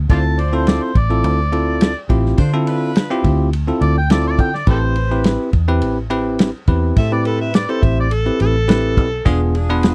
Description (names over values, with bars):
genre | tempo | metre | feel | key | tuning
straight-eighth soul blues | 105 BPM | 4/4 | straight | A minor | A4 = 440 Hz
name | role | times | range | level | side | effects
vintage muted fingered electric bass | bass | 0.0-9.9 s | E1 to D3 | -20 LUFS | equal | none
overdriven harmonica | melody | 0.1-9.2 s | G4 to A5 | -24 LUFS | equal | none
bell-like tine electric piano | accompaniment | 0.1-9.9 s | B3 to C5 | -22 LUFS | equal | none
clear horn section | sustained chords | 0.1-9.9 s | F3 to C5 | -30 LUFS | equal | none
warm soul drum kit | drums | 0.1-9.9 s | kick drum, ride cymbal, snare drum | -17 LUFS | equal | none
room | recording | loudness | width
little or no reverb | dry, close 1970s-style studio recording | -17 LUFS | mono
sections
0.0-9.9 A section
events
harmonica solo 0.0-9.9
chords
0.1 Dm7; 4.7 Am7; 9.3 E7b9